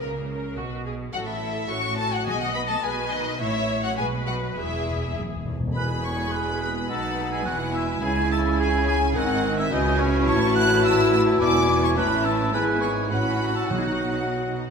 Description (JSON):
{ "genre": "quick classical-period movement for symphony orchestra", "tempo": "106 BPM", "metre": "2/4", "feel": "straight", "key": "E major", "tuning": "A4 = 440 Hz", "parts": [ { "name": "rich studio violin section", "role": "melody", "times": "0.0-14.6 s", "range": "A#4 to C#6", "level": "-32 LUFS", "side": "left 4 dB", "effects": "none" }, { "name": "rich studio violin section", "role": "second line", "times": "0.0-14.6 s", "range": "A#3 to F#6", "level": "-31 LUFS", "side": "left 2 dB", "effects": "none" }, { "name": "clear studio viola section", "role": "accompaniment", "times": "0.0-14.6 s", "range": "B3 to D#5", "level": "-30 LUFS", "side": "equal", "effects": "none" }, { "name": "mellow French horn section", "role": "sustained chords", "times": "0.0-14.6 s", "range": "A#2 to G#4", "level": "-28 LUFS", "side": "left 3 dB", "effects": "none" }, { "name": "rich studio cello section", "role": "bass", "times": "0.0-14.7 s", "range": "C#2 to C#3", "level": "-30 LUFS", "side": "right 2 dB", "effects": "none" }, { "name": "rich studio double bass section", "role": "bass", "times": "0.0-14.7 s", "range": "E1 to C#2", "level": "-31 LUFS", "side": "right 3 dB", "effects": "none" }, { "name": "timpani", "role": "percussion", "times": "2.3-6.6, 11.4-14.5 s", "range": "E2 to B2", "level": "-32 LUFS", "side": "equal", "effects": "none" }, { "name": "concert flute", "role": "second line", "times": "5.8-14.6 s", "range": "F#5 to A5", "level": "-33 LUFS", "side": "left 2 dB", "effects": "none" }, { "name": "warm clarinet", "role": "second line", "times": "5.8-14.6 s", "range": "B#3 to E4", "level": "-31 LUFS", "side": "right 1 dB", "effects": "none" }, { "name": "warm oboe", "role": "second line", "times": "5.8-14.6 s", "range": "C#4 to F#5", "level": "-28 LUFS", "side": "right 2 dB", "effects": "none" }, { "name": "warm bassoon", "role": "accompaniment", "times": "5.8-14.6 s", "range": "B2 to F#3", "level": "-31 LUFS", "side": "right 1 dB", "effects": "none" } ], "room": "wet scoring stage reverb, RT60 1.6 s", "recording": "none", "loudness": "-21 LUFS", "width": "side -6 dB against mid", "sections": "0.0-5.8 A section; 5.8-14.7 B section", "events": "timpani fill 4.6-5.8", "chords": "0.0 A#m/C#; 0.6 B5; 1.1 A5; 2.3 B; 3.4 A; 4.0 B5; 4.6 E; 6.9 B7; 7.5 E; 8.0 C#m; 9.2 G#7; 9.7 C#m; 10.3 A; 11.4 E7; 12.0 A; 12.5 E/G#; 13.1 F#m/A; 13.7 B" }